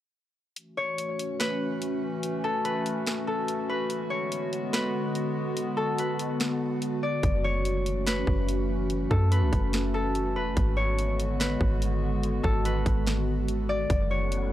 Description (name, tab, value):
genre	hip hop, atmospheric cloud-rap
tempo	144 BPM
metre	4/4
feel	half-time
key	F# minor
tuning	A4 = 440 Hz
part	warbly tape-like pad	sustained chords	0.9-14.5 s	D3 to F#4	-30 LUFS	equal	chorus, built-in reverb, sidechain pumping
part	trap drum kit	drums	0.6-14.4 s	hi-hat, kick drum, snare drum	-29 LUFS	equal	none
part	concert harp	melody	0.8-14.5 s	A4 to D5	-31 LUFS	left 2 dB	analog delay
part	soft 808-style bass	bass	7.2-14.5 s	E1 to F#2	-27 LUFS	equal	none
part	wind-like tuned noise texture	texture	14.1-14.5 s	E4 to F#5	-42 LUFS	left 1 dB	built-in reverb
room	little or no reverb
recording	dry, gritty hardware recording, cassette tape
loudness	-25 LUFS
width	side -13 dB against mid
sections	0.6-14.5 A section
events	kick muted 0.6-7.2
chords	0.6 F#m7; 3.9 G#m7b5; 7.2 F#m7; 10.6 G#m7b5; 13.9 F#m7